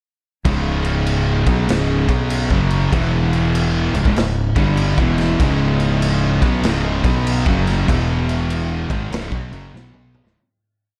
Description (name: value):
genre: stoner and doom metal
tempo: 97 BPM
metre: 4/4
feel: swing 65% on 8ths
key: C# minor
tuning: A4 = 440 Hz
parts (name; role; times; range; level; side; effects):
- deep rumbling drone; sustained chords; 1.4-10.3 s; C#4 to F#5; -33 LUFS; equal; none
- high-gain distorted guitar; riff; 0.5-10.3 s; C#2 to B3; -28 LUFS; equal; distortion
- thick fuzz guitar; riff; 0.5-10.3 s; C#2 to B3; -25 LUFS; equal; distortion
- thick fuzz guitar; riff; 0.5-10.4 s; C#2 to B3; -25 LUFS; equal; distortion
- growling fingered electric bass; bass; 0.5-10.3 s; C#1 to B1; -24 LUFS; equal; overdrive, tube saturation
- raw garage drum kit; drums; 0.5-10.4 s; crash cymbal, kick drum, snare drum, toms; -24 LUFS; equal; none
room: light reverb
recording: dark, warm production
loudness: -18 LUFS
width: mono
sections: 0.5-10.4 riff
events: fade-out 7.9-10.4; drum fill 9.7-10.4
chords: 0.5 C#5; 2.9 E5; 3.9 C#m; 7.9 E5; 8.8 C#5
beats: | 0.46 1.07 1.69 2.31 | 2.93 3.55 4.17 4.79 | 5.41 6.03 6.64 7.26 | 7.88 8.50 9.12 9.74